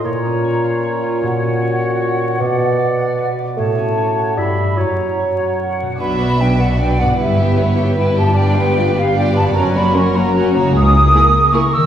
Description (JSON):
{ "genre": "cinematic, playful, whimsical film cue", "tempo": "152 BPM", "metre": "3/4", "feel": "straight", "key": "B minor", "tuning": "A4 = 440 Hz", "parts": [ { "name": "clear oboe", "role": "second line", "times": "0.0-5.8 s", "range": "Db5 to E5", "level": "-26 LUFS", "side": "right 1 dB", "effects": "none" }, { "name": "hollow small flute group", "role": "second line", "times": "0.0-11.9 s", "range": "E5 to E6", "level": "-19 LUFS", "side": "equal", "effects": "none" }, { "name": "mellow clarinet", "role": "second line", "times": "0.0-5.8 s", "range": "E4 to F#4", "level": "-26 LUFS", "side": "left 1 dB", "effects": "none" }, { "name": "mellow bassoon", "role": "accompaniment", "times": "0.0-5.8 s", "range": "Bb2 to A3", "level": "-20 LUFS", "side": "right 2 dB", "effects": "none" }, { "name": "concert harp", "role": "arpeggios", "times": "0.0-11.9 s", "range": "F#2 to F#5", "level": "-21 LUFS", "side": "left 2 dB", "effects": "none" }, { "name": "warm chamber violin section", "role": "melody", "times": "6.0-11.9 s", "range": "F#4 to E5", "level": "-24 LUFS", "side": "left 2 dB", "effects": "none" }, { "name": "rich chamber violin section", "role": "second line", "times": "6.0-11.6 s", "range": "C#4 to E5", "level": "-24 LUFS", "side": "equal", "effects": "none" }, { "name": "warm chamber viola section", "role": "accompaniment", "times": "6.0-11.6 s", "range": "F#3 to G4", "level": "-20 LUFS", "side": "equal", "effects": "none" }, { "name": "rich chamber cello section", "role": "bass", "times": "6.0-11.1 s", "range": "C#2 to B2", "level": "-19 LUFS", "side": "right 1 dB", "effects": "none" }, { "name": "warm studio double bass section", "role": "bass", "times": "6.0-11.1 s", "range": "F#1 to C#2", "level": "-19 LUFS", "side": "right 1 dB", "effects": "none" }, { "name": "mellow French horn section", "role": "sustained chords", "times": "6.4-11.7 s", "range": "A#3 to G#4", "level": "-26 LUFS", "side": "left 2 dB", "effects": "none" } ], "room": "wet scoring stage reverb, RT60 1.6 s", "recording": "heard from further back in the room, vinyl crackle", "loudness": "-13 LUFS", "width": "side -10 dB against mid", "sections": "0.0-6.0 A section; 6.0-11.9 B section", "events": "none", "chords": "0.0 Bbm; 1.2 F#/A#; 2.4 Bm; 3.6 F#m/A; 4.4 Em/G; 4.8 F#; 6.0 Bm; 7.2 Em/G; 8.4 G7; 9.5 F#; 10.7 A#m7b5/C#" }